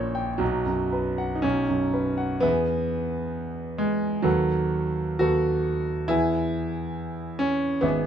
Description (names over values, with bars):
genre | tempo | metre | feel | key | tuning
classical, romantic character piece for solo piano | 58-71 BPM | 2/4 | rubato | E major | A4 = 440 Hz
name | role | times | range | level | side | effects
clear concert grand piano | solo | 0.0-8.1 s | G#1 to G#5 | -23 LUFS | right 1 dB | none
room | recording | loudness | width
little or no reverb | close, detailed microphones | -23 LUFS | side -9 dB against mid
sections
0.0-2.4 A section; 2.4-8.1 B section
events
none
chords
0.4 B5; 2.4 E; 4.3 B7/D#; 6.1 E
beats
| 0.40 1.44 | 2.43 3.35 | 4.25 5.21 | 6.09 6.97 | 7.83